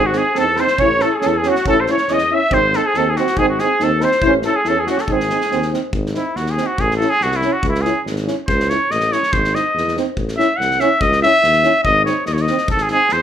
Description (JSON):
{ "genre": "balkan folk, Balkan brass band", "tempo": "141 BPM", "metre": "2/4", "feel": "straight", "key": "G# phrygian dominant", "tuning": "A4 = 441 Hz", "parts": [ { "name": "cornet with straight mute", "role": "melody", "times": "0.0-13.2 s", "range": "E4 to F#5", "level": "-16 LUFS", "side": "equal", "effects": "none" }, { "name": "clear trumpet", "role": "second line", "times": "0.0-5.7 s", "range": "F#4 to E5", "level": "-22 LUFS", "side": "left 3 dB", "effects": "none" }, { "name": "mellow tuba", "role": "bass", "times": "0.0-13.2 s", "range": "G#1 to E2", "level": "-23 LUFS", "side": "equal", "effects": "none" }, { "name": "warm trombone", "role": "accompaniment", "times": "0.1-13.0 s", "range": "B#3 to C#4", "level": "-22 LUFS", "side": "right 7 dB", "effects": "none" }, { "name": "loose indie drum kit", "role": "percussion", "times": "0.1-13.1 s", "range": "kick drum, snare drum", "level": "-26 LUFS", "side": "left 1 dB", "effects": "none" }, { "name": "dark French horn", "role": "accompaniment", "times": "0.2-13.0 s", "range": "D#4 to E4", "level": "-24 LUFS", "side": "left 5 dB", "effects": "none" } ], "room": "moderate large studio reverb, RT60 0.8 s", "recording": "band playing live in one room", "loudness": "-14 LUFS", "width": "side -9 dB against mid", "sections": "0.0-5.9 A section; 5.9-12.7 B section", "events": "speeding up 0.0-13.2; cornet solo 5.9-12.7", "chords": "0.0 G#; 0.8 A; 2.5 G#; 4.2 A; 5.1 G#; 6.8 A; 7.6 C#m; 9.3 G#; 10.2 A; 11.0 C#m; 11.8 G#", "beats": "0.36 | 0.80 1.23 | 1.66 2.09 | 2.52 2.95 | 3.38 3.80 | 4.23 4.66 | 5.09 5.51 | 5.94 6.36 | 6.79 7.21 | 7.64 8.06 | 8.48 8.91 | 9.33 9.75 | 10.17 10.59 | 11.01 11.43 | 11.84 12.26 | 12.68 13.10" }